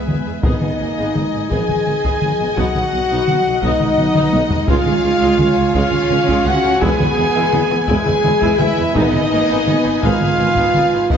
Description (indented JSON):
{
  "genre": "cinematic, epic orchestral film score",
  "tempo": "56 BPM (dotted quarters)",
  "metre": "6/8",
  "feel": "straight",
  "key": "unclear",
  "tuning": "A4 = 442 Hz",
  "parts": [
    { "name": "warm symphonic violin section", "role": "melody", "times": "0.0-11.2 s", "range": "B4 to Ab5", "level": "-28 LUFS", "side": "left 3 dB", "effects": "none" },
    { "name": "warm symphonic violin section", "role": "second line", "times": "0.0-11.2 s", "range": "B4 to Ab5", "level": "-26 LUFS", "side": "left 4 dB", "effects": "none" },
    { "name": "warm symphonic viola section", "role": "accompaniment", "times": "0.0-11.2 s", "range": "Ab3 to G#4", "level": "-25 LUFS", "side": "equal", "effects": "none" },
    { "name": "mellow French horn section", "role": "sustained chords", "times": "0.0-11.2 s", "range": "B3 to G#4", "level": "-18 LUFS", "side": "left 1 dB", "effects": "none" },
    { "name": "mellow trumpet section", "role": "stabs", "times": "0.0-11.2 s", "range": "B4 to G#5", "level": "-22 LUFS", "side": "right 1 dB", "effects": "none" },
    { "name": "dark symphonic cello section", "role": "bass", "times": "0.0-11.2 s", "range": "Eb3 to Db4", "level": "-24 LUFS", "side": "right 4 dB", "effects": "none" },
    { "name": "warm symphonic double bass section", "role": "bass", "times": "0.1-11.2 s", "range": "Ab1 to E2", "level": "-25 LUFS", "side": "right 3 dB", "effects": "none" },
    { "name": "warm tuba", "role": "bass", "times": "0.1-11.2 s", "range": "E1 to Db2", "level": "-26 LUFS", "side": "right 4 dB", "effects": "none" },
    { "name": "taiko ensemble", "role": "drums", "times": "0.1-11.2 s", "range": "none", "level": "-21 LUFS", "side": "left 1 dB", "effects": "none" }
  ],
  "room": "wet concert hall reverb, RT60 2.4 s",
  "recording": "nothing above 7.7 kHz",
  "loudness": "-13 LUFS",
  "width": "side -7 dB against mid",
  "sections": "0.0-11.2 A section",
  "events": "drum fill 4.2-4.7",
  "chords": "0.4 Abm; 2.6 Cb; 4.7 Db; 6.8 E; 9.0 Abm",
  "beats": "| 0.43 1.51 | 2.57 3.63 | 4.69 5.75 | 6.82 7.88 | 8.95 10.03 | 11.12"
}